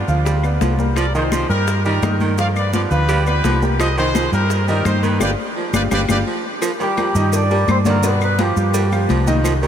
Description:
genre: latin, salsa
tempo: 170 BPM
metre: 4/4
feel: straight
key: C minor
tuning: A4 = 440 Hz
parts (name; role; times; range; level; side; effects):
- bright trumpet section; melody; 0.0-6.2 s; D4 to F5; -24 LUFS; left 1 dB; analog delay
- raspy baritone saxophone; second line; 0.0-9.7 s; Eb3 to G3; -24 LUFS; right 4 dB; analog delay
- bright upright piano; accompaniment; 0.0-9.7 s; B2 to F5; -23 LUFS; right 1 dB; none
- hollow-body short-scale fingered electric bass; bass; 0.0-9.7 s; G1 to G2; -18 LUFS; equal; none
- congas; percussion; 0.1-9.7 s; none; -25 LUFS; left 5 dB; none
- maracas; percussion; 0.1-9.7 s; none; -35 LUFS; right 8 dB; none
- bongos and cowbell; percussion; 0.3-9.6 s; none; -29 LUFS; left 8 dB; none
- claves; percussion; 0.4-9.6 s; none; -35 LUFS; left 5 dB; none
- mellow horn section; melody; 6.8-9.7 s; G3 to D5; -21 LUFS; equal; analog delay
room: moderate huge ambient reverb, RT60 5.8 s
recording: dreamy mix soaked in reverb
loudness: -15 LUFS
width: side -9 dB against mid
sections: 0.0-6.6 A section; 6.6-9.7 B section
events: band accent 5.2-6.6; drum fill 5.7-6.6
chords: 0.0 G7; 1.0 Cm7; 2.4 G7; 3.8 Cm7; 5.2 G7; 6.6 Cm7 (rootless); 8.0 G7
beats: 0.26 0.61 | 0.97 1.32 1.67 2.03 | 2.38 2.73 3.09 3.44 | 3.80 4.15 4.50 4.86 | 5.21 5.56 5.92 6.27 | 6.62 6.98 7.33 7.68 | 8.04 8.39 8.74 9.10 | 9.45

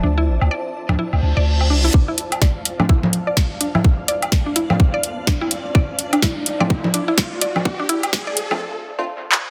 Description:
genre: minimal techno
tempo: 126 BPM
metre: 4/4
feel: swing 60% on 16ths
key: D minor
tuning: A4 = 439 Hz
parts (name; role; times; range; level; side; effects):
- mallet-like synth pluck; riff; 0.0-8.3 s; D4 to D5; -27 LUFS; equal; chorus, phaser, sidechain pumping, tape echo
- punchy sub bass; bass; 0.0-1.9 s; A1 to D2; -19 LUFS; equal; sidechain pumping
- flickering grainy texture; texture; 0.0-8.6 s; D5 to F5; -39 LUFS; equal; built-in reverb, sidechain pumping
- granular cloud pad; texture; 0.0-8.6 s; F4 to A5; -34 LUFS; equal; built-in reverb, sidechain pumping
- woodblock and congas; percussion; 0.4-8.6 s; none; -24 LUFS; equal; none
- reverse cymbal and riser; sound effects; 1.2-8.6 s; none; -31 LUFS; equal; none
- electronic kick drum; drums; 1.9-8.2 s; none; -20 LUFS; equal; none
- booming analog drum machine; drums; 2.2-9.4 s; handclaps, hi-hat, snare drum; -23 LUFS; equal; low-pass filter on hats, low-pass filter on snare
- wavetable chord stab; stabs; 2.8-9.0 s; A3 to F4; -30 LUFS; equal; dub echo
room: light reverb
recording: dense, heavily limited modern master, high-pass filter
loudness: -19 LUFS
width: mono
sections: 0.0-1.9 A section; 1.9-9.5 B section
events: reverse cymbal 1.2-1.9; build-up 1.9-9.5; riser 1.9-8.6; filter sweep on synth arpeggio sound 1.9-9.5; filter sweep on synth stab 1.9-9.5; filter sweep 1.9-9.5; drum fill 9.3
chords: 0.0 Dm7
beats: | 0.04 0.51 0.99 1.46 | 1.94 2.42 2.89 3.37 | 3.85 4.32 4.80 5.27 | 5.75 6.23 6.70 7.18 | 7.65 8.13 8.61 9.08

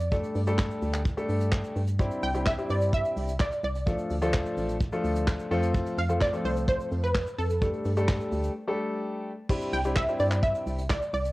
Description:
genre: dance-pop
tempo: 128 BPM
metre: 4/4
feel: straight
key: C major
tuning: A4 = 439 Hz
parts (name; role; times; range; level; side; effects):
- wide unison pluck; melody; 0.0-11.3 s; A4 to G5; -30 LUFS; right 1 dB; cassette tape, tape echo
- organ-like FM bass; bass; 0.0-11.3 s; A1 to G2; -29 LUFS; equal; sidechain pumping
- soft brush drum kit; drums; 0.0-11.3 s; crash cymbal, handclaps, hi-hat, kick drum, shaker, snare drum; -29 LUFS; equal; cassette tape
- warm grand piano; accompaniment; 0.1-10.8 s; F3 to A4; -30 LUFS; left 1 dB; sidechain pumping, cassette tape
room: light reverb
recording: home recording on cassette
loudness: -25 LUFS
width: side -19 dB against mid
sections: 0.0-9.5 A section; 9.5-11.3 A section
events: break 8.6-9.5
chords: 0.1 Gsus2; 2.0 Cadd9; 3.9 Dm; 5.5 F; 7.6 Gsus2; 9.5 Cadd9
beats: | 0.12 0.59 1.06 1.52 | 1.99 2.46 2.93 3.40 | 3.87 4.34 4.81 5.28 | 5.74 6.21 6.68 7.15 | 7.62 8.09 8.56 9.03 | 9.49 9.96 10.43 10.90

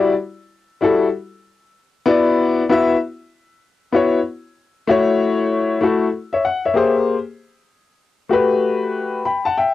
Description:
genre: hip hop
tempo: 96 BPM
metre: 4/4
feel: swing 62% on 16ths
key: D major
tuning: A4 = 442 Hz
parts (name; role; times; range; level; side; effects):
- clear upright piano; solo; 0.0-9.7 s; G3 to B5; -15 LUFS; left 3 dB; cassette tape
room: moderate booth ambience, RT60 0.2 s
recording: home recording on cassette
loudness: -16 LUFS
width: side -13 dB against mid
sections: 0.0-9.7 A section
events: none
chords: 0.0 Em9; 2.1 D69; 4.9 F#m7; 6.8 G#maj9; 7.4 Gmaj9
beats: 0.51 1.14 1.76 | 2.38 3.01 3.63 4.26 | 4.88 5.51 6.13 6.76 | 7.38 8.01 8.63 9.26

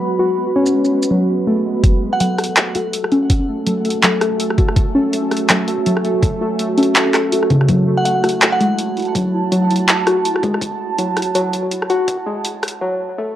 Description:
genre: half-time drum and bass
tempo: 164 BPM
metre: 4/4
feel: swing 58% on 16ths, half-time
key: F# minor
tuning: A4 = 440 Hz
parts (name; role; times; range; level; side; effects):
- deep dark ambient pad; sustained chords; 0.0-12.8 s; F#4 to B5; -23 LUFS; right 5 dB; chorus, built-in reverb, sidechain pumping
- warbly dusty pluck; arpeggios; 0.0-13.3 s; C#3 to F#4; -18 LUFS; left 1 dB; chorus, analog delay
- pulsing gated texture; texture; 0.0-12.8 s; G#3 to A4; -23 LUFS; equal; chorus, built-in reverb
- drum and bass drum kit; drums; 0.7-12.8 s; handclaps, hi-hat, rim click, shaker; -18 LUFS; equal; overdrive, high-pass filter on perc, studio ambience, high-pass filter on hats, high-pass filter on snare
- electronic kick drum; drums; 1.8-12.2 s; none; -16 LUFS; equal; overdrive, studio ambience
- glassy synth bell; melody; 2.1-2.3, 8.0-8.8 s; F#5; -23 LUFS; right 1 dB; chorus, vintage 12-bit sampler grit, tape echo
room: light reverb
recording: dry, gritty hardware recording, cassette tape, high-pass filter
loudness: -14 LUFS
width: side -12 dB against mid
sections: 0.0-1.8 A section; 1.8-13.4 B section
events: filter sweep on synth pluck 0.0-1.8, 1.8-13.4; build-up 1.8-13.4; filter sweep on ambient pad 1.8-13.4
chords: 0.0 F#sus2; 1.8 F#madd9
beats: 0.01 | 0.37 0.74 1.10 1.47 | 1.84 2.20 2.57 2.94 | 3.30 3.67 4.03 4.40 | 4.76 5.13 5.50 5.86 | 6.23 6.59 6.96 7.33 | 7.69 8.06 8.42 8.79 | 9.15 9.52 9.89 10.25 | 10.62 10.98 11.35 11.71 | 12.08 12.45 12.81 13.18

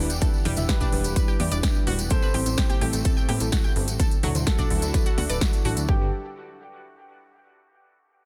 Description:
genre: progressive house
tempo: 127 BPM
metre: 4/4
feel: straight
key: G major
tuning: A4 = 440 Hz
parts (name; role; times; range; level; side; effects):
- lush unison pad; sustained chords; 0.0-6.1 s; D3 to F#5; -41 LUFS; equal; chorus, phaser, sidechain pumping
- deep mellow chord stab; stabs; 0.0-6.1 s; A2 to E5; -34 LUFS; equal; chorus, phaser, cassette tape, sidechain pumping, dub echo
- plucky analog bass; bass; 0.0-6.1 s; D1 to A2; -29 LUFS; equal; sidechain pumping
- big-room dance drum kit; drums; 0.1-5.9 s; hi-hat, snare drum; -33 LUFS; equal; overdrive, sidechain pumping on hats
- tambourine; percussion; 0.1-5.9 s; none; -39 LUFS; equal; none
- analog pluck; arpeggios; 0.2-6.1 s; F#3 to G6; -37 LUFS; equal; chorus, sidechain pumping, dub echo
- electronic kick drum; drums; 0.2-6.0 s; none; -25 LUFS; equal; none
- electronic congas and toms; percussion; 0.2-5.3 s; none; -36 LUFS; equal; overdrive, sidechain pumping on perc, sidechain pumping on toms
- dark baby grand piano; melody; 0.7-6.1 s; F#4 to C5; -38 LUFS; equal; sidechain pumping, dub echo
room: little or no reverb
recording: dense, heavily limited modern master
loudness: -23 LUFS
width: mono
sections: 0.0-5.9 A section; 5.9-7.8 B section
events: drop 0.0-5.9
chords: 0.0 Gadd9; 2.1 Am7; 4.0 Dadd9; 5.9 Gadd9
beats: | 0.22 0.69 1.16 1.63 | 2.11 2.58 3.05 3.52 | 4.00 4.47 4.94 5.41 | 5.89

